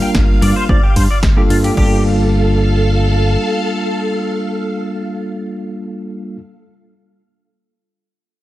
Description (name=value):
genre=nu-disco, nu disco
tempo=111 BPM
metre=4/4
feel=straight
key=G minor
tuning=A4 = 440 Hz
part: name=tine electric piano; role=accompaniment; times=0.0-6.4 s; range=G3 to C5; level=-19 LUFS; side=equal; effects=medium stereo tremolo, sidechain pumping, tape echo
part: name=string machine, full ensemble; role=sustained chords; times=0.0-6.4 s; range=A4 to F5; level=-23 LUFS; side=equal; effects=phaser, ensemble chorus, sidechain pumping
part: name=electric guitar at the edge of break-up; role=riff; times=0.0-2.0 s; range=F4 to G5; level=-23 LUFS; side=left 2 dB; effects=ensemble chorus, low-pass filter, tape echo
part: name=modern bright fingered electric bass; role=bass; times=0.0-3.4 s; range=G1 to G2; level=-15 LUFS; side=equal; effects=none
part: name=house drum kit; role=drums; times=0.1-1.9 s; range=crash cymbal, hi-hat, snare drum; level=-24 LUFS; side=equal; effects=none
part: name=electronic kick drum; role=drums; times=0.2-1.9 s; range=none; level=-14 LUFS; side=equal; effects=none
room=little or no reverb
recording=none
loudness=-13 LUFS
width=side -16 dB against mid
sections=0.0-1.8 A section; 1.8-6.1 B section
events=filter sweep on clean electric guitar 0.0-1.8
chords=0.0 Gm9